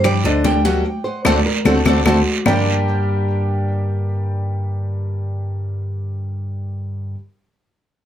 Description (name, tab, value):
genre	latin, Cuban son and guajira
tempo	149 BPM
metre	4/4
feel	straight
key	G harmonic minor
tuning	A4 = 441 Hz
part	Cuban tres	melody	0.0-7.2 s	C5 to G5	-24 LUFS	right 3 dB	plate reverb, tape echo
part	picked acoustic archtop guitar	accompaniment	0.0-7.2 s	G2 to G4	-27 LUFS	left 2 dB	none
part	warm baby grand piano	arpeggios	0.0-7.1 s	D3 to G5	-23 LUFS	equal	none
part	bell-like tine electric piano	bass	0.0-7.1 s	D2 to G2	-20 LUFS	equal	none
part	bongos	percussion	0.0-2.6 s	none	-22 LUFS	left 4 dB	none
part	claves	percussion	0.0-2.6 s	none	-26 LUFS	left 2 dB	none
part	guiro	percussion	0.0-2.6 s	none	-27 LUFS	right 6 dB	none
part	congas	percussion	0.1-2.6 s	none	-23 LUFS	equal	none
part	flamenco guitar	second line	1.0-7.1 s	F#4 to D5	-25 LUFS	right 1 dB	none
room	light reverb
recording	close, detailed microphones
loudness	-17 LUFS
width	side -10 dB against mid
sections	0.0-2.5 A section; 2.5-5.7 B section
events	band accent 0.8-2.5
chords	0.0 Gm; 0.8 D7; 2.5 Gm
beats	0.04 0.45 | 0.85 1.25 1.66 2.06 | 2.46 2.86 3.27 3.67 | 4.07 4.47 4.88 5.28